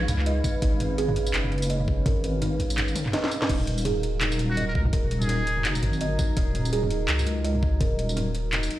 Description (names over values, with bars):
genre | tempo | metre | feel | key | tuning
half-time drum and bass | 167 BPM | 4/4 | swing 58% on 16ths, half-time | Eb minor | A4 = 440 Hz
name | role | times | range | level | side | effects
dark analog pad | sustained chords | 0.0-8.8 s | Gb3 to Cb5 | -33 LUFS | left 1 dB | chorus, sidechain pumping
buzzing kalimba | arpeggios | 0.0-8.8 s | Eb4 to Eb5 | -32 LUFS | right 4 dB | dub echo
deep soft wobble bass | bass | 0.0-8.7 s | Eb1 to Db2 | -26 LUFS | equal | chorus
flickering grainy texture | texture | 0.0-3.5 s | F5 | -44 LUFS | right 1 dB | built-in reverb
drum and bass drum kit | drums | 0.1-8.8 s | crash cymbal, handclaps, hi-hat, snare drum, tambourine, toms | -29 LUFS | equal | none
electronic kick drum | drums | 0.4-7.9 s | none | -25 LUFS | equal | overdrive
trumpet with metal mute | melody | 4.5-5.7 s | Gb4 to Bb4 | -34 LUFS | equal | vintage 12-bit sampler grit, dub echo
room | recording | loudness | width
light reverb, digital ambience | played on a big sound system in a bare room, large studio reverb | -22 LUFS | side -14 dB against mid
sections
0.0-3.5 A section; 3.5-8.8 A section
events
drop 0.0-3.5, 3.5-8.8; drum fill 3.0-3.5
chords
0.0 Abm; 3.5 Ebm